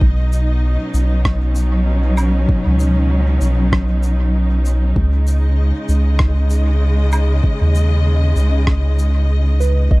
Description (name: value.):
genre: ambient dub.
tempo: 97 BPM.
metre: 4/4.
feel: swing 58% on 16ths.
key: unclear.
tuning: A4 = 440 Hz.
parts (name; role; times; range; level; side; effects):
clear studio string section; sustained chords; 0.0-10.0 s; B2 to D#5; -22 LUFS; left 1 dB; none.
soft dub sub bass; bass; 0.0-10.0 s; B1 to D#2; -14 LUFS; equal; none.
electronic kick drum; drums; 0.0-10.0 s; none; -16 LUFS; equal; overdrive.
shaker, rim click and woodblock; drums; 0.3-9.7 s; none; -26 LUFS; right 1 dB; dub echo.
soft synth bell; arpeggios; 9.6-10.0 s; B4 to D#5; -23 LUFS; right 6 dB; chorus.
room: studio reverb.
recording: dark, warm production.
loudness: -13 LUFS.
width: side -22 dB against mid.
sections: 0.0-10.0 A section.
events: none.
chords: 0.0 Badd9; 5.0 C#sus2.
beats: | 0.01 0.63 1.25 1.87 | 2.49 3.11 3.73 4.34 | 4.96 5.58 6.20 6.82 | 7.44 8.05 8.67 9.29 | 9.91.